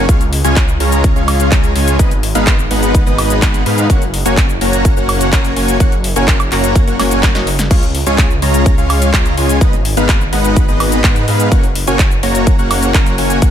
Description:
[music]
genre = EDM, festival progressive house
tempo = 126 BPM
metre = 4/4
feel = straight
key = F# major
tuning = A4 = 438 Hz
[part]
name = dense compressed supersaw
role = riff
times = 0.0-13.5 s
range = G#3 to A#5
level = -15 LUFS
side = equal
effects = sidechain pumping, ping-pong delay
[part]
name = wide detuned saw bass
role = bass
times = 0.0-13.5 s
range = F#1 to G#2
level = -17 LUFS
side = equal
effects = chorus, sidechain pumping
[part]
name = big-room dance drum kit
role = drums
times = 0.1-13.5 s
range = cabasa, crash cymbal, handclaps, hi-hat, snare drum, woodblock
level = -19 LUFS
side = equal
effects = none
[part]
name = electronic kick drum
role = drums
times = 0.1-13.5 s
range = none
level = -12 LUFS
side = equal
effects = none
[sound]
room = little or no reverb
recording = none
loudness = -10 LUFS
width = side -9 dB against mid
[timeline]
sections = 0.0-13.5 A section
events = drum fill 7.0-7.7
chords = 0.1 C#; 2.0 G#m; 3.9 F#; 7.7 C#; 9.6 G#m; 11.5 F#

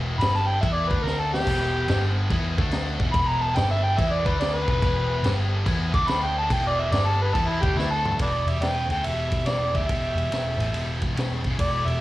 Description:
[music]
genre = blues rock power trio and southern rock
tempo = 142 BPM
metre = 4/4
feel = swing 66% on 8ths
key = E minor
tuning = A4 = 440 Hz
[part]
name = distorted electric guitar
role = riff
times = 0.0-12.0 s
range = E2 to E4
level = -31 LUFS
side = left 1 dB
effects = overdrive, slapback echo
[part]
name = hollow-body short-scale picked electric bass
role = bass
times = 0.0-12.0 s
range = E1 to E2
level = -25 LUFS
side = equal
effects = none
[part]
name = overdriven harmonica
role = melody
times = 0.2-12.0 s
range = E4 to D6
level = -25 LUFS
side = equal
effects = slapback echo
[part]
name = vintage drum kit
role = drums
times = 0.2-11.9 s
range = crash cymbal, kick drum, ride cymbal, snare drum, splash cymbal, toms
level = -28 LUFS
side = equal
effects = none
[part]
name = dark smooth lead guitar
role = second line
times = 8.2-12.0 s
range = E4 to B4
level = -40 LUFS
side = right 4 dB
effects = overdrive, slapback echo
[sound]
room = little or no reverb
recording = live gig heard through the venue's PA, club reverb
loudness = -21 LUFS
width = side -16 dB against mid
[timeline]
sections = 0.0-8.2 A section; 8.2-12.0 B section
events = harmonica solo 0.0-8.2; drum fill 1.0-1.5, 7.8-8.2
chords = 0.2 G5; 0.6 E5; 1.0 D5; 1.5 Em; 1.9 G5; 2.3 E5; 2.5 D5; 2.9 E5; 3.6 G5; 4.0 E5; 4.2 D5; 4.6 E5; 5.2 G5; 5.7 E5; 6.1 D5; 6.5 E5; 6.9 G5; 7.4 E5; 7.8 D5; 8.2 Em7

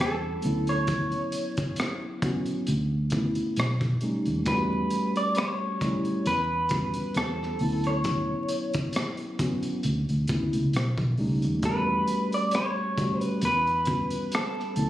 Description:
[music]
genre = R&B, neo-soul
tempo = 67 BPM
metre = 4/4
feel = swing 55% on 16ths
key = E dorian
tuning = A4 = 438 Hz
[part]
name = electric guitar through a small old amp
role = melody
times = 0.0-14.9 s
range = A4 to D5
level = -28 LUFS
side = equal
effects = slapback echo
[part]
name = mellow tine electric piano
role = accompaniment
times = 0.0-14.9 s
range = F#3 to F#4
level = -30 LUFS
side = equal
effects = none
[part]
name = vintage muted fingered electric bass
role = bass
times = 0.0-14.9 s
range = B1 to E2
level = -28 LUFS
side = equal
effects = none
[part]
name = crunchy breakbeat drum kit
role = drums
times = 0.0-14.9 s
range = hi-hat, kick drum, rim click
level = -32 LUFS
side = equal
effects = none
[sound]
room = light reverb, small room ambience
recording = recorded on a phone in the room, studio reverb, vinyl crackle, compression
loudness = -24 LUFS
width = side -13 dB against mid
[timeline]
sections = 0.0-14.9 A section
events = none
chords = 0.4 Dmaj9; 2.7 Bm11/D; 3.6 B7b13; 4.5 Em69; 7.6 Dmaj9; 9.8 Bm11; 10.7 B7b13; 11.6 Em69

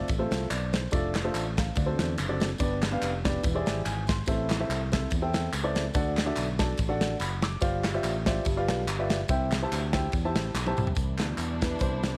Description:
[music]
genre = uptempo gospel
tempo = 143 BPM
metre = 4/4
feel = swing 55% on 8ths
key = C major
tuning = A4 = 440 Hz
[part]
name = warm upright piano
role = accompaniment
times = 0.0-12.2 s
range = G2 to D6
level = -33 LUFS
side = equal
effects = none
[part]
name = fingered electric bass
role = bass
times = 0.0-12.2 s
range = E1 to E2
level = -34 LUFS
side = equal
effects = none
[part]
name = modern studio drum kit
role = drums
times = 0.1-12.1 s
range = hi-hat, kick drum, ride cymbal, snare drum, toms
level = -33 LUFS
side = equal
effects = none
[part]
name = tambourine and handclaps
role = percussion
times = 0.1-12.1 s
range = none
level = -41 LUFS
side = equal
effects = none
[part]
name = clear studio string section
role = sustained chords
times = 11.0-12.2 s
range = E3 to E4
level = -40 LUFS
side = equal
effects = none
[sound]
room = light reverb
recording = none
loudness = -28 LUFS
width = mono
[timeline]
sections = 0.0-11.0 A section; 11.0-12.2 B section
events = drum fill 10.5-11.0; upright piano solo 11.0-12.2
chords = 0.0 F; 0.9 Dm/F; 1.8 D7; 2.6 G; 3.4 E7alt; 4.3 Am; 5.9 D; 7.6 G7sus4; 8.5 G7; 9.3 C; 11.0 Cmaj9

